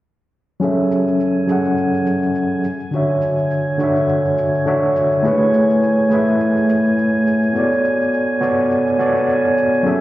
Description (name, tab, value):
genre	sunset chillout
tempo	104 BPM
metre	4/4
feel	swing 56% on 16ths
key	unclear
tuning	A4 = 441 Hz
part	overdriven tine electric piano	accompaniment	0.6-10.0 s	D3 to F#5	-15 LUFS	equal	fast tremolo, auto-pan, low-pass filter, tape echo
part	shaker	drums	0.6-10.0 s	none	-52 LUFS	left 1 dB	none
part	drifting glass-harmonics texture	texture	1.1-10.0 s	G#5	-28 LUFS	right 1 dB	chorus, built-in reverb
room	moderate concert hall reverb, RT60 2.2 s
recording	heard muffled through a wall, stone room reverb, EQ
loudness	-14 LUFS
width	side -15 dB against mid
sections	0.6-10.0 A section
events	filter sweep on tine electric piano 0.6-10.0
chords	0.6 F#m9; 2.6 Dmaj7; 5.2 Amaj7; 7.6 Bm7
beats	| 0.63 1.21 1.78 2.36 | 2.94 3.51 4.09 4.67 | 5.24 5.82 6.40 6.97 | 7.55 8.13 8.71 9.28 | 9.86